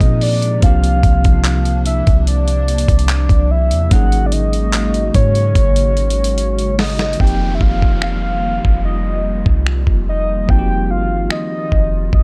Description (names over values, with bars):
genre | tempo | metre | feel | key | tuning
contemporary R&B | 73 BPM | 4/4 | straight | unclear | A4 = 440 Hz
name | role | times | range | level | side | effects
soft octave-layered synth lead | melody | 0.0-12.2 s | Db5 to G5 | -24 LUFS | equal | chorus, tape echo
bell-like tine electric piano | accompaniment | 0.0-12.2 s | F3 to Ab4 | -26 LUFS | equal | none
hollow soft pad | sustained chords | 0.0-12.2 s | C3 to Gb4 | -28 LUFS | equal | ensemble chorus
clean 808-style bass | bass | 0.0-12.2 s | F1 to Bb2 | -19 LUFS | equal | none
dusty soul sampler-style drum kit | drums | 0.0-12.2 s | finger snaps, handclaps, hi-hat, kick drum, snare drum | -17 LUFS | equal | none
downlifter | sound effects | 7.2-12.2 s | none | -37 LUFS | equal | none
room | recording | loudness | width
digital ambience | dry, gritty hardware recording | -15 LUFS | mono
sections
0.0-7.2 A section; 7.2-12.2 B section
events
drum fill 5.6-7.2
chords
0.0 Bb9sus4; 0.6 C9sus4; 3.9 Ab9sus4; 7.2 F9sus4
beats
| 0.62 1.45 2.27 3.09 | 3.91 4.74 5.56 6.38 | 7.20 8.02 8.84 9.67 | 10.49 11.31 12.13